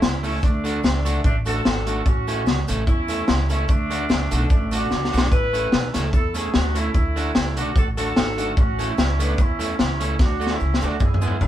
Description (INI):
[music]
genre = ska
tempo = 147 BPM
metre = 4/4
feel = swing 54% on 8ths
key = unclear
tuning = A4 = 439 Hz
[part]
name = warm horn section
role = melody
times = 0.0-11.5 s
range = A3 to B4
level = -27 LUFS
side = right 1 dB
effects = none
[part]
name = upright bass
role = bass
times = 0.0-11.5 s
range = G#1 to E2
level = -24 LUFS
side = equal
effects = none
[part]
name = raw garage drum kit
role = drums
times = 0.0-11.5 s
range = hi-hat, kick drum, snare drum, toms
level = -21 LUFS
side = equal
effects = none
[part]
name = cabasa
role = percussion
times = 0.0-11.5 s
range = none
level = -44 LUFS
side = left 3 dB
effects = none
[part]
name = electric guitar at the edge of break-up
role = accompaniment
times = 0.2-11.4 s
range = G#3 to A4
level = -28 LUFS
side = right 2 dB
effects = none
[sound]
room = moderate small room ambience, RT60 0.5 s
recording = band playing live in one room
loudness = -18 LUFS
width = side -12 dB against mid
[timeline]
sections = 0.0-11.5 A section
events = drum fill 4.9-5.3, 10.2-11.5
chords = 0.4 D; 2.1 A; 3.7 D; 5.3 A; 6.9 D; 8.6 A; 10.2 D